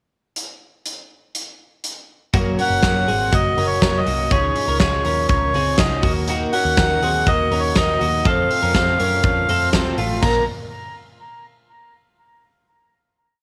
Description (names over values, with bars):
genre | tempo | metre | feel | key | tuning
jangly indie pop | 122 BPM | 4/4 | straight | Bb minor | A4 = 443 Hz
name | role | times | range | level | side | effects
big rock drum kit | drums | 0.4-10.3 s | crash cymbal, hi-hat, kick drum, snare drum | -24 LUFS | equal | none
picked twelve-string acoustic guitar | accompaniment | 2.3-10.4 s | F2 to Gb4 | -28 LUFS | equal | none
twelve-string electric guitar | arpeggios | 2.3-10.5 s | A3 to Bb4 | -28 LUFS | equal | subtle chorus
vintage muted picked electric bass | bass | 2.3-10.5 s | F1 to Gb2 | -27 LUFS | equal | none
melodica | melody | 2.6-10.5 s | Db5 to Bb5 | -23 LUFS | equal | tape echo
room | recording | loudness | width
light reverb, studio ambience | none | -18 LUFS | mono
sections
0.4-2.3 pickup bar; 2.3-10.2 pre-chorus; 10.2-12.2 final chord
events
none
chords
0.4 N.C.; 2.3 Gb; 4.3 Dbadd9; 6.0 Ebm; 8.3 F; 10.2 Bb5